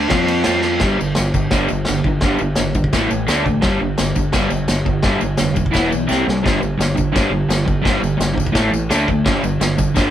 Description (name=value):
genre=garage rock duo or trio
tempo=170 BPM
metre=4/4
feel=straight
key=unclear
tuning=A4 = 438 Hz
part: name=crunchy overdriven guitar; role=riff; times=0.0-10.1 s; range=G2 to F4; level=-17 LUFS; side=equal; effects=none
part: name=growling fingered electric bass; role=bass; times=0.0-10.1 s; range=E1 to F2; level=-26 LUFS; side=equal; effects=overdrive
part: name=vintage drum kit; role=drums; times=0.1-10.0 s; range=crash cymbal, kick drum, ride cymbal, snare drum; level=-19 LUFS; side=equal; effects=none
part: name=tambourine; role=percussion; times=0.5-10.0 s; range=none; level=-34 LUFS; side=left 7 dB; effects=none
room=light reverb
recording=band playing live in one room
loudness=-15 LUFS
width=side -11 dB against mid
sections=0.8-10.1 A section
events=drum fill 0.6, 6.1-6.4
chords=0.1 F5; 0.8 G5; 2.9 A5; 3.3 D5; 3.6 G5; 5.7 E5; 6.1 C5; 6.4 G5; 8.6 A5; 8.9 D5; 9.3 G5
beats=0.11 0.46 | 0.81 1.17 1.52 1.87 | 2.22 2.57 2.93 3.28 | 3.63 3.98 4.33 4.68 | 5.04 5.39 5.74 6.09 | 6.44 6.79 7.15 7.50 | 7.85 8.20 8.55 8.91 | 9.26 9.61 9.96